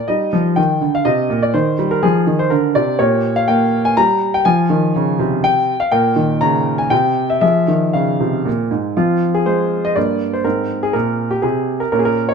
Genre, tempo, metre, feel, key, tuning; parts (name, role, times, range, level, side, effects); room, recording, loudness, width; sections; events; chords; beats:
classical-period piano sonatina; 122 BPM; 3/4; rubato; F minor; A4 = 436 Hz
clear concert grand piano; solo; 0.0-12.3 s; G2 to Bb5; -14 LUFS; equal
moderate stone room reverb, RT60 1.3 s; minimal, uncompressed stereo recording; -14 LUFS; side -6 dB against mid
0.0-9.0 A section; 9.0-12.3 B section
0.1 Eb; 3.0 Bbm6; 4.0 N.C.; 4.5 Fm; 5.9 Gdim/Bb; 6.9 N.C.; 7.4 Fm; 10.0 Gmadd11; 10.4 Abadd9
| 0.09 0.58 1.07 | 1.55 2.04 2.52 | 3.00 3.48 3.97 | 4.46 4.95 5.43 | 5.92 6.42 6.92 | 7.43 7.95 8.46 | 8.98 9.47 9.96 | 10.45 10.94 11.43 | 11.92